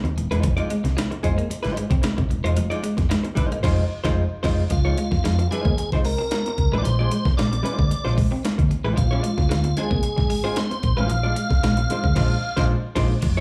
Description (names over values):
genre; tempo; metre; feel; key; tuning
funk; 112 BPM; 4/4; straight; unclear; A4 = 440 Hz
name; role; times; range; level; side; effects
vintage hollow-body jazz guitar; accompaniment; 0.0-13.4 s; Ab3 to D5; -30 LUFS; equal; slapback echo
hollow-body short-scale fingered electric bass; bass; 0.0-13.4 s; Eb1 to F2; -25 LUFS; equal; none
breakbeat sampler-style drum kit; drums; 0.0-13.4 s; crash cymbal, hi-hat, kick drum, snare drum; -27 LUFS; equal; none
congas; percussion; 0.0-13.4 s; none; -37 LUFS; equal; none
electric guitar at the edge of break-up; riff; 0.2-13.3 s; F3 to C4; -31 LUFS; equal; analog chorus, slapback echo
tonewheel organ; melody; 4.7-12.7 s; F4 to F5; -30 LUFS; equal; overdrive, chorus vibrato, slapback echo
room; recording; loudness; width
little or no reverb; live gig heard through the venue's PA, club reverb; -22 LUFS; mono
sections
0.0-4.7 A section; 4.7-13.2 B section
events
band accent 3.6-4.7, 12.2-13.2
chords
0.0 Fm7; 4.7 Dbmaj9; 6.8 Bb9